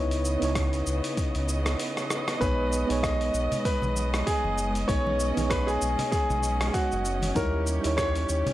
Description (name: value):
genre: sunset chillout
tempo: 97 BPM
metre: 4/4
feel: swing 57% on 16ths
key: B major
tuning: A4 = 440 Hz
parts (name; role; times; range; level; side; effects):
- soft electric-piano-like synth keys; accompaniment; 0.0-8.5 s; G3 to C#5; -31 LUFS; moving between left 4 dB and right 3 dB; chorus, auto-pan, analog delay
- bright studio string section; sustained chords; 0.0-8.5 s; C#3 to D#5; -34 LUFS; right 1 dB; none
- round analog bass; bass; 0.0-8.4 s; F#1 to D#2; -29 LUFS; equal; none
- dusty soul sampler-style drum kit; drums; 0.1-8.5 s; cabasa, hi-hat, rim click; -33 LUFS; equal; none
- electronic kick drum; drums; 0.6-8.1 s; none; -30 LUFS; equal; none
- bright concert grand piano; melody; 2.4-8.5 s; F#4 to D#5; -29 LUFS; equal; tape echo
- congas; percussion; 3.5-8.5 s; none; -34 LUFS; right 1 dB; none
room: little or no reverb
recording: dry, gritty hardware recording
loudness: -24 LUFS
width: side -14 dB against mid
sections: 0.0-8.5 A section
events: drum fill 2.0-2.4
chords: 0.0 C#m9; 2.4 B69; 7.4 D#7b9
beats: 0.56 1.18 1.80 | 2.42 3.03 3.65 4.27 | 4.89 5.51 6.13 6.74 | 7.36 7.98